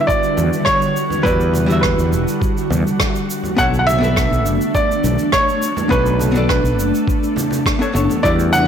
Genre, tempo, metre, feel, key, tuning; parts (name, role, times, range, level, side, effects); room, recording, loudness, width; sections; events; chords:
sunset chillout; 103 BPM; 4/4; straight; A4 = 440 Hz
clear baby grand piano; melody; 0.0-8.7 s; B4 to F#5; -19 LUFS; right 1 dB; ping-pong delay
hollow-body jazz guitar; accompaniment; 0.0-8.7 s; G3 to E5; -23 LUFS; moving between left 4 dB and right 3 dB; auto-pan, ping-pong delay
ethereal airy pad; sustained chords; 0.0-8.7 s; D3 to F#4; -21 LUFS; left 1 dB; ensemble chorus, built-in reverb
electronic kick drum; drums; 0.1-8.4 s; -21 LUFS; equal
shaker and rim click; drums; 0.1-8.7 s; -24 LUFS; right 2 dB
fretless electric bass; bass; 0.4-8.7 s; E1 to E2; -18 LUFS; equal
congas; percussion; 0.4-8.6 s; -28 LUFS; right 3 dB
moderate recital hall reverb, RT60 1.7 s; blown-out, overdriven recording, overdrive; -14 LUFS; side -8 dB against mid
0.0-8.7 A section
0.0 Em9; 3.3 Bm9